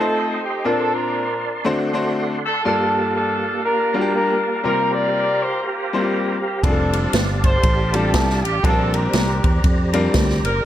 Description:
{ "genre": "uptempo gospel", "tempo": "120 BPM", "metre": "4/4", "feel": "swing 59% on 8ths", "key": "unclear", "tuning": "A4 = 440 Hz", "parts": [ { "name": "warm horn section", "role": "melody", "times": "0.0-10.6 s", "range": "Bb3 to D5", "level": "-21 LUFS", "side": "equal", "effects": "none" }, { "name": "bright concert grand piano", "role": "accompaniment", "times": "0.0-10.3 s", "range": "G2 to C5", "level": "-22 LUFS", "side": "left 2 dB", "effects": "none" }, { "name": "percussive tonewheel organ", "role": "sustained chords", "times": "0.0-10.7 s", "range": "Bb3 to C6", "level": "-26 LUFS", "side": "right 3 dB", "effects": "slow rotary speaker, chorus vibrato" }, { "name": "fingered electric bass", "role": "bass", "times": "6.6-10.6 s", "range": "F1 to F2", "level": "-21 LUFS", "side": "equal", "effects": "none" }, { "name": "swinging big-band drum kit", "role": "drums", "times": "6.6-10.5 s", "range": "kick drum, ride cymbal, snare drum", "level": "-20 LUFS", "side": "equal", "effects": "none" } ], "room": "light reverb, small room ambience", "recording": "none", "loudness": "-17 LUFS", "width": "side -12 dB against mid", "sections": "0.0-10.7 A section", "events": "none", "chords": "0.0 F7; 0.6 Bbmaj9; 1.6 D7; 2.6 Gm9; 4.6 C7sus4; 6.6 F69; 8.6 Bb69" }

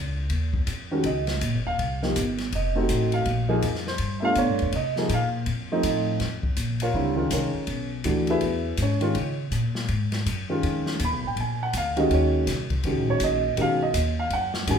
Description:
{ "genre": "jazz piano trio", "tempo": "163 BPM", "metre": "4/4", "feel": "swing 63% on 8ths", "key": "Bb minor", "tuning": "A4 = 443 Hz", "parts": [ { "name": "upright bass", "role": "bass", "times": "0.0-14.8 s", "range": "Eb1 to Db3", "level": "-27 LUFS", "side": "equal", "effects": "none" }, { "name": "open jazz drum kit", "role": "drums", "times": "0.3-14.8 s", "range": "hi-hat, kick drum, ride cymbal, snare drum", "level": "-32 LUFS", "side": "left 2 dB", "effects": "none" }, { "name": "warm baby grand piano", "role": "melody", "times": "0.9-14.8 s", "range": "D3 to Cb6", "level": "-24 LUFS", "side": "right 1 dB", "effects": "none" } ], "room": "wet large studio reverb, RT60 0.9 s", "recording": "band playing live in one room", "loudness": "-22 LUFS", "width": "side -7 dB against mid", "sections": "0.0-6.2 A section; 6.2-14.8 B section", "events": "none", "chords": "0.3 Eb7sus2; 1.8 C5; 2.5 F7b9; 3.3 Bb5; 4.0 G7; 4.7 Bbsus4; 5.5 F7; 6.2 Bbm7; 7.7 Bm7; 8.4 E; 9.2 Gbadd9; 10.6 Fm7b5; 11.4 Bb7; 12.1 Ebm7; 13.6 Badd9" }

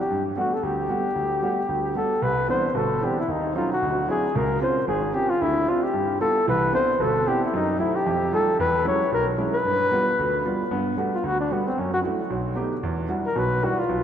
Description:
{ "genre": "jazz", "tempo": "226 BPM", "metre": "4/4", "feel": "swing 58% on 8ths", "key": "C major, G major from 10.7 s", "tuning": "A4 = 440 Hz", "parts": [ { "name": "breathy flugelhorn", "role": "melody", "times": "0.0-14.0 s", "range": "B3 to C#5", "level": "-23 LUFS", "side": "left 1 dB", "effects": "none" }, { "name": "warm concert grand piano", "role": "accompaniment", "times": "0.1-14.0 s", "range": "G1 to G4", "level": "-26 LUFS", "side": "right 2 dB", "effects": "none" } ], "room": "wet cathedral reverb, RT60 5.1 s", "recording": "in a vast, echoing space", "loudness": "-21 LUFS", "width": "side -9 dB against mid", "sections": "0.0-2.2 A section; 2.2-10.7 B section; 10.7-14.0 C section", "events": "flugelhorn solo 10.7-14.0", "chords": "0.1 Gmaj9; 2.2 Cmaj9; 3.3 Ebm7; 3.8 D9; 4.3 Dbmaj7; 5.4 Dm7; 5.9 G7; 6.5 Cmaj9; 7.5 F#m7; 8.1 F9; 8.6 E69; 9.6 G7; 10.7 Gmaj9; 11.8 F#m7; 12.3 Baug7; 12.8 Em9" }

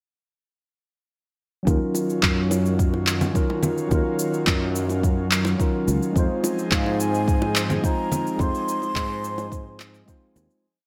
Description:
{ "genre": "sunset chillout", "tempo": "107 BPM", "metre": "4/4", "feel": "straight", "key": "Eb dorian", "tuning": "A4 = 441 Hz", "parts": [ { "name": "mellow tine electric piano", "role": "accompaniment", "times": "1.6-10.7 s", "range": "Gb3 to C5", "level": "-29 LUFS", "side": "equal", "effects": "low-pass filter, delay" }, { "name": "airy breathy pad", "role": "sustained chords", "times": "1.7-10.6 s", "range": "Eb3 to Ab4", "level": "-33 LUFS", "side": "equal", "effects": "chorus" }, { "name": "sustaining fretless electric bass", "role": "bass", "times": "1.7-10.5 s", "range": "Db2 to Ab2", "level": "-27 LUFS", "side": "equal", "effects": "none" }, { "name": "electronic cabasa, handclaps and congas", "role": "drums", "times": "1.7-10.6 s", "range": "none", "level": "-28 LUFS", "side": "equal", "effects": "gated reverb" }, { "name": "electronic kick drum", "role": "drums", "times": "1.7-10.2 s", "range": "none", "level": "-26 LUFS", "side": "equal", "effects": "none" }, { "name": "bongos", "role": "percussion", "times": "1.9-10.5 s", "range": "none", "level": "-35 LUFS", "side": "equal", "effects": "none" }, { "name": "breathy mellow concert flute", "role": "melody", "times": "6.7-10.1 s", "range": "F5 to C6", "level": "-32 LUFS", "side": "equal", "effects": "delay" } ], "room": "moderate lush hall reverb, RT60 1.8 s, digital ambience", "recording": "bright 1980s-style digital production", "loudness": "-23 LUFS", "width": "mono", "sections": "1.7-10.6 groove", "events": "filter sweep on tine electric piano 1.7-10.6; fade-out 7.7-10.6", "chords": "1.7 Ebm9; 6.2 Fm7" }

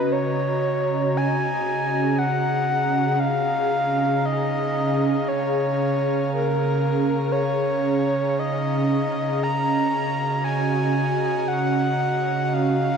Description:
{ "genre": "ambient", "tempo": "58 BPM", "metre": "4/4", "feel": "straight", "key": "unclear", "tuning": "A4 = 440 Hz", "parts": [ { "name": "breathy flute-like synth lead", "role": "melody", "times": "0.0-13.0 s", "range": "Bb4 to Bb5", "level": "-24 LUFS", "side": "equal", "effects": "chorus, ping-pong delay" }, { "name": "airy breathy pad", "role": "sustained chords", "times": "0.0-13.0 s", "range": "Db3 to Bb5", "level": "-22 LUFS", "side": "right 1 dB", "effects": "chorus" }, { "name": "organ-like drone", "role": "drone", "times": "1.4-13.0 s", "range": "Db3 to Db4", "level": "-34 LUFS", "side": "equal", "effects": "none" } ], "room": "wet concert hall reverb, RT60 2.0 s", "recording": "dark, warm production", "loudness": "-20 LUFS", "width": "side -6 dB against mid", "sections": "0.0-13.0 A section", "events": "none", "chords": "0.1 Gbmaj7/Db" }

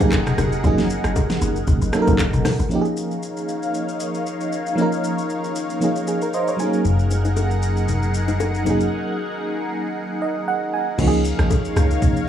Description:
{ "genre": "amapiano", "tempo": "116 BPM", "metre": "4/4", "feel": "swing 55% on 16ths", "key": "Db major", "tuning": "A4 = 440 Hz", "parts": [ { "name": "FM electric piano with tremolo", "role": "accompaniment", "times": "0.0-12.3 s", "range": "F3 to Ab5", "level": "-22 LUFS", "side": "right 2 dB", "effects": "none" }, { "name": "lush unison pad", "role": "sustained chords", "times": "0.0-12.3 s", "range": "Eb4 to Gb5", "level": "-27 LUFS", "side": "left 1 dB", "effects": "chorus, phaser, sidechain pumping" }, { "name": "smooth R&B drum kit", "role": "drums", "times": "0.0-12.3 s", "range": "crash cymbal, handclaps, hi-hat, kick drum, rim click, shaker, snare drum, toms", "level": "-23 LUFS", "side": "equal", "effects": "vintage 12-bit sampler grit" }, { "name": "bongos and congas", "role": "percussion", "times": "0.0-2.6, 6.8-12.2 s", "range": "none", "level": "-28 LUFS", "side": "left 8 dB", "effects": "none" }, { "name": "deep log drum bass", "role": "bass", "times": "0.1-2.7, 11.0-12.0 s", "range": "F1 to Db2", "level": "-22 LUFS", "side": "equal", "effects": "none" }, { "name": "plucky analog bass", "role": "bass", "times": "6.8-8.9 s", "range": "Gb1", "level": "-20 LUFS", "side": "left 1 dB", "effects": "none" } ], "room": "light reverb, digital ambience", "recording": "small room ambience", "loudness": "-18 LUFS", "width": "side -10 dB against mid", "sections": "0.0-2.7 A section; 2.7-11.0 B section; 11.0-12.3 A section", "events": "drop 0.0-2.7, 11.0-12.3; FM electric piano fill 6.1-6.8, 10.0-11.0; break 8.9-11.0", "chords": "0.0 Gb69; 2.7 Db69; 6.6 Gb69; 11.0 Db69" }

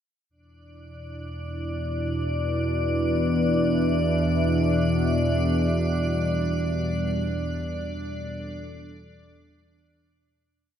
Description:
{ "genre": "dark ambient drone", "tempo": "free time", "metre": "none", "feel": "none", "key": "E minor", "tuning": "A4 = 440 Hz", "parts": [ { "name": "dark analog pad", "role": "sustained chords", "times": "1.2-10.7 s", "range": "G3 to E5", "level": "-32 LUFS", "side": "equal", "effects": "chorus" }, { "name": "analog drone", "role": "drone", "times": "1.0-10.8 s", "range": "E2 to B2", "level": "-25 LUFS", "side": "equal", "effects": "chorus" }, { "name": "icy glass pad", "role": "texture", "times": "1.1-10.8 s", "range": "D4 to D5", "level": "-29 LUFS", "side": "right 1 dB", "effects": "chorus, built-in reverb" } ], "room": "wet cathedral reverb, RT60 6.5 s", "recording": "in a vast, echoing space", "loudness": "-22 LUFS", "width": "side -9 dB against mid", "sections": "0.3-10.7 A section", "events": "fade-out on analog synth pad 0.3-10.7; fade-out 5.5-10.7", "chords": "0.3 E5; 5.5 G5" }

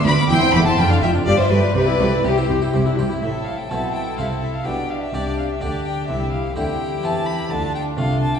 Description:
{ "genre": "classical, baroque-style concerto movement with solo episodes", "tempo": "126 BPM", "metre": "3/4", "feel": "straight", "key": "C major, A minor from 3.2 s", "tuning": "A4 = 440 Hz", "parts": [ { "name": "rich chamber violin section", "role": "melody", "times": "0.0-8.4 s", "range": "A4 to D6", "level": "-31 LUFS", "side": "left 4 dB", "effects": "none" }, { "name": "rich violin", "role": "melody", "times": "0.0-8.4 s", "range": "G4 to B5", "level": "-26 LUFS", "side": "left 1 dB", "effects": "none" }, { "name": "harpsichord", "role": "accompaniment", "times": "0.0-8.4 s", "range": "D2 to B4", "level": "-26 LUFS", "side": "right 2 dB", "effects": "none" }, { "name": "rich chamber viola section", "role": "accompaniment", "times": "0.0-8.4 s", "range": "B3 to G4", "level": "-25 LUFS", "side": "left 1 dB", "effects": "none" }, { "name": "rich chamber double bass section", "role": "bass", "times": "0.0-8.4 s", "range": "E1 to E2", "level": "-25 LUFS", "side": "right 1 dB", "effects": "none" }, { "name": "warm chamber cello section", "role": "bass", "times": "0.0-8.4 s", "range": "D2 to E3", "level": "-24 LUFS", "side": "equal", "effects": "none" }, { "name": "rich chamber violin section", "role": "second line", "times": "0.1-8.4 s", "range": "F4 to B5", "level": "-25 LUFS", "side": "left 2 dB", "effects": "none" } ], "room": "wet scoring stage reverb, RT60 1.8 s", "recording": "heard from further back in the room, nothing above 10.8 kHz", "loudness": "-17 LUFS", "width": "side -7 dB against mid", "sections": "0.0-3.2 A section; 3.2-8.4 B section", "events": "none", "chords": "0.3 C/E; 0.8 Dm/F; 1.3 G7; 1.8 C; 3.2 Am; 4.7 G/B; 6.1 C; 7.5 Dm" }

